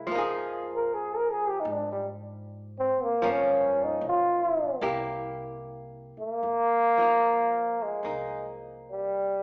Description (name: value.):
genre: jazz ballad.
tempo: 75 BPM.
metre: 4/4.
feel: swing 67% on 8ths.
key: F minor.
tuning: A4 = 440 Hz.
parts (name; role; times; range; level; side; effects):
trombone with cup mute; melody; 0.0-9.4 s; G3 to Bb4; -28 LUFS; equal; none.
archtop guitar, miked and amplified; accompaniment; 0.0-9.4 s; F3 to Ab4; -36 LUFS; equal; none.
upright bass; bass; 0.0-9.4 s; B1 to Ab2; -48 LUFS; equal; none.
room: wet large studio reverb, RT60 1.4 s.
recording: band playing live in one room, small speaker sound.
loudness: -27 LUFS.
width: mono.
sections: 0.0-6.4 A section; 6.4-9.4 B section.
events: trombone solo 0.0-6.4.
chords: 0.1 Fm7; 3.2 Gm7b5; 4.8 C7; 6.4 Fm11.